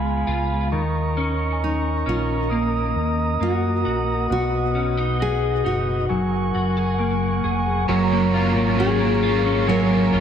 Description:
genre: dream pop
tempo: 67 BPM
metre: 4/4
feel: straight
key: F# major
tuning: A4 = 439 Hz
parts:
  - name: mellow tonewheel organ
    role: sustained chords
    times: 0.0-10.2 s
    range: B3 to D#6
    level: -26 LUFS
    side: right 2 dB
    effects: wide subtle chorus
  - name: clean electric guitar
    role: arpeggios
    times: 0.0-10.2 s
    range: B2 to G#4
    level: -23 LUFS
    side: left 1 dB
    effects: ensemble chorus, digital delay
  - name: fingered electric bass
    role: bass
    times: 0.0-10.2 s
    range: E#1 to F#2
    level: -25 LUFS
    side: equal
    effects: none
  - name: celesta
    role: texture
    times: 1.5-10.2 s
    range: F#5 to A#5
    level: -35 LUFS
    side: right 4 dB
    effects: none
  - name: nylon-string guitar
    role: melody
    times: 1.6-10.2 s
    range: D#4 to A#4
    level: -25 LUFS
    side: left 4 dB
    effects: digital delay
  - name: cranked stack guitar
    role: accompaniment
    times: 7.9-10.2 s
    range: F#3 to E#4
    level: -26 LUFS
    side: right 4 dB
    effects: overdrive, tremolo, ensemble chorus
room: moderate plate reverb, RT60 3.1 s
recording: none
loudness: -19 LUFS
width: side -8 dB against mid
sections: 0.0-7.9 A section; 7.9-10.2 B section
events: none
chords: 0.0 C#7; 0.7 D#m7; 4.3 B; 6.1 F#add9; 7.9 F#maj7

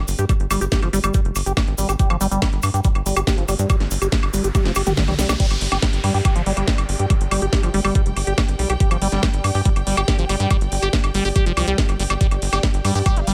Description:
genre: psychedelic trance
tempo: 141 BPM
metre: 4/4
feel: straight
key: unclear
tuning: A4 = 440 Hz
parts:
  - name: tight sequencer bass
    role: bass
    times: 0.0-13.3 s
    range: F1 to G2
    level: -24 LUFS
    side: equal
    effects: none
  - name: drum and bass drum kit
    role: drums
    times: 0.1-13.3 s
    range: crash cymbal, hi-hat, ride cymbal, snare drum, toms, woodblock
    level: -27 LUFS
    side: equal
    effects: none
  - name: cabasa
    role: percussion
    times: 0.1-5.4 s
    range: none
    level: -34 LUFS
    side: equal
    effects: none
  - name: liquid acid bass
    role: riff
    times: 0.2-13.3 s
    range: F3 to G4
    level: -27 LUFS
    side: equal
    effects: phaser, sidechain pumping, tape echo
  - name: electronic kick drum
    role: drums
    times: 0.3-13.1 s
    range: none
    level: -21 LUFS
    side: equal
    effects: none
  - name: riser and downlifter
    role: sound effects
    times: 3.4-8.8 s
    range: none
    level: -35 LUFS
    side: equal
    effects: none
  - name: warm studio string section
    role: texture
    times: 5.4-13.3 s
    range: G4 to G5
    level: -32 LUFS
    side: equal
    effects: sidechain pumping
room: little or no reverb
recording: none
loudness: -19 LUFS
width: mono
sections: 0.0-5.4 A section; 5.4-13.3 B section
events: riser 3.4-5.4; drum fill 4.5-5.4; drop 5.4-13.3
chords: 0.0 N.C.; 5.4 G5

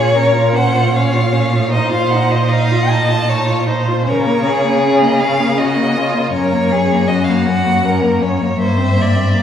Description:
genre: classical, slow romantic movement for string quartet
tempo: 78 BPM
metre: 3/4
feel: rubato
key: Bb minor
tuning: A4 = 440 Hz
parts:
  - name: rich violin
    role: melody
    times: 0.0-9.4 s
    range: Db5 to A5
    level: -19 LUFS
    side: left 1 dB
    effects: none
  - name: rich violin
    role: second line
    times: 0.0-9.4 s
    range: F4 to Eb5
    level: -19 LUFS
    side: equal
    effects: none
  - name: rich viola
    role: accompaniment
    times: 0.0-9.4 s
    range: Bb3 to F4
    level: -19 LUFS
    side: left 1 dB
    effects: none
  - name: rich cello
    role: bass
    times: 0.0-9.4 s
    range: Gb2 to Db3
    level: -16 LUFS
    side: equal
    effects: none
room: wet concert hall reverb, RT60 1.8 s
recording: heard from further back in the room, vinyl crackle, studio ambience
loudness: -12 LUFS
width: side -9 dB against mid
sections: 0.0-9.4 A section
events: none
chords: 0.0 Bbm; 1.7 F7/Bb; 4.1 Bbm/Db; 6.3 Gb; 8.6 C7/G

